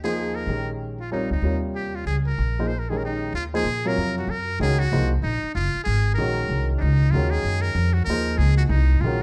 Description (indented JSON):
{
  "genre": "modal jazz",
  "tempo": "190 BPM",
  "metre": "3/4",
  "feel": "swing 63% on 8ths",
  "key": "Eb dorian from 3.3 s",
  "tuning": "A4 = 440 Hz",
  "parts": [
    { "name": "trumpet with metal mute", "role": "melody", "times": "0.0-9.2 s", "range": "D4 to C5", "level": "-30 LUFS", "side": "equal", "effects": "plate reverb" },
    { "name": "warm baby grand piano", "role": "accompaniment", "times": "0.0-9.2 s", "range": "C3 to Db5", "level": "-30 LUFS", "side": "equal", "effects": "none" },
    { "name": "upright bass", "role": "bass", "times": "0.0-9.2 s", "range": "Gb1 to Bb2", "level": "-25 LUFS", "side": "equal", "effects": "none" }
  ],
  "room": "light reverb",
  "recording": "dark, warm production",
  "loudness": "-23 LUFS",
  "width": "mono",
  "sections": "0.0-3.3 A section; 3.3-9.2 B section",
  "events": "none",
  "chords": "0.0 Eb9sus4; 3.3 Ebm11",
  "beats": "0.17 | 0.48 0.80 1.12 | 1.43 1.75 2.07 | 2.38 2.70 3.02 | 3.33 3.65 3.97 | 4.28 4.60 4.92 | 5.23 5.55 5.87 | 6.18 6.50 6.81 | 7.13 7.45 7.76 | 8.08 8.40 8.71 | 9.03"
}